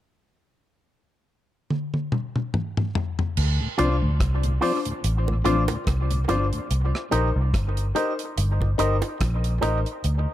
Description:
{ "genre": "dub reggae", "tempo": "72 BPM", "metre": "4/4", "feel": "swing 56% on 16ths", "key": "D phrygian", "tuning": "A4 = 438 Hz", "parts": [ { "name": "deep reggae drum kit", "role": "drums", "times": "1.7-10.3 s", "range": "crash cymbal, hi-hat, kick drum, rim click, toms", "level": "-27 LUFS", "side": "equal", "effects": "none" }, { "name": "vintage muted fingered electric bass", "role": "bass", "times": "3.4-10.3 s", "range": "G1 to D2", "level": "-22 LUFS", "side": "equal", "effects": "none" }, { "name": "mellow tonewheel organ", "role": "accompaniment", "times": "3.6-6.6 s", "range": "D2 to D4", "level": "-32 LUFS", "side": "left 2 dB", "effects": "slow rotary speaker, dub echo" }, { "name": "electric guitar with an envelope filter", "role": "accompaniment", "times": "3.8-9.8 s", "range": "F4 to Eb5", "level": "-30 LUFS", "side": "right 5 dB", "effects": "dub echo" }, { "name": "clear grand piano", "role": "stabs", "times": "3.8-9.8 s", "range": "D4 to C5", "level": "-28 LUFS", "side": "left 5 dB", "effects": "dub echo" }, { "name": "bongos", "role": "percussion", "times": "3.8-9.8 s", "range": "none", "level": "-35 LUFS", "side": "right 8 dB", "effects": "none" } ], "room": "light reverb", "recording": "echo-heavy mix", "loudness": "-21 LUFS", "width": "side -13 dB against mid", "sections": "0.0-3.4 A section; 3.4-10.3 B section", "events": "drum fill 1.7-3.4", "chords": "0.0 N.C.; 3.4 Dm7; 6.7 Cm7", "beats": "| 0.03 0.87 1.70 2.54 | 3.37 4.20 5.04 5.87 | 6.70 7.54 8.37 9.20 | 10.04" }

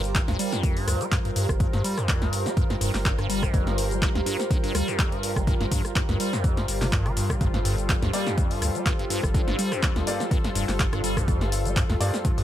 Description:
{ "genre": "acid house", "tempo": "124 BPM", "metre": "4/4", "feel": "swing 55% on 16ths", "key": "G minor", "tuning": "A4 = 440 Hz", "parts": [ { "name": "warm analog pad", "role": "sustained chords", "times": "0.0-12.4 s", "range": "G3 to Bb4", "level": "-32 LUFS", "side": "equal", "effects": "chorus, tremolo, sidechain pumping" }, { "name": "saturated sub bass", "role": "bass", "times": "0.0-12.0 s", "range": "F1 to D2", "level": "-29 LUFS", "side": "equal", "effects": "sidechain pumping" }, { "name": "punchy analog drum machine", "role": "drums", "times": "0.0-12.4 s", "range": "cabasa, handclaps, hi-hat, rim click, snare drum", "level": "-30 LUFS", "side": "left 1 dB", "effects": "overdrive" }, { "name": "ethereal airy pad", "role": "texture", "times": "0.0-12.4 s", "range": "G4 to C5", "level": "-34 LUFS", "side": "equal", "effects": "ensemble chorus, built-in reverb, phaser, sidechain pumping" }, { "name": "liquid acid bass", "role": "riff", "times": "0.1-12.4 s", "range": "F2 to Bb3", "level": "-28 LUFS", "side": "equal", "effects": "phaser, overdrive, ping-pong delay" }, { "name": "electronic kick drum", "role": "drums", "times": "0.1-12.4 s", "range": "none", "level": "-25 LUFS", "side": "equal", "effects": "overdrive" }, { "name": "clear concert grand piano", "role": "stabs", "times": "8.1-12.2 s", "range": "Bb3 to D5", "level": "-32 LUFS", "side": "equal", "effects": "ping-pong delay" } ], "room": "light reverb", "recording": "none", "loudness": "-22 LUFS", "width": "side -12 dB against mid", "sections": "0.0-12.4 A section", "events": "none", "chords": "0.0 Gm7", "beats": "0.15 0.64 1.12 | 1.60 2.09 2.57 3.05 | 3.54 4.02 4.51 4.99 | 5.47 5.96 6.44 6.92 | 7.41 7.89 8.38 8.86 | 9.34 9.83 10.31 10.80 | 11.28 11.76 12.25" }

